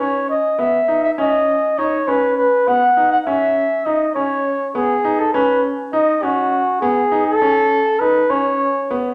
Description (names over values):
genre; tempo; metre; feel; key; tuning
contemporary instrumental, contemporary; 202 BPM (eighths); 7/8; straight; unclear; A4 = 440 Hz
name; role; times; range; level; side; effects
mellow flugelhorn; melody; 0.0-9.1 s; F#4 to F#5; -18 LUFS; equal; none
clear concert grand piano; arpeggios; 0.0-9.1 s; B3 to D#4; -24 LUFS; equal; none
room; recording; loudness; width
wet recital hall reverb, RT60 1.3 s; none; -17 LUFS; mono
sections
0.0-9.1 A section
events
none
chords
0.0 Badd9 (rootless)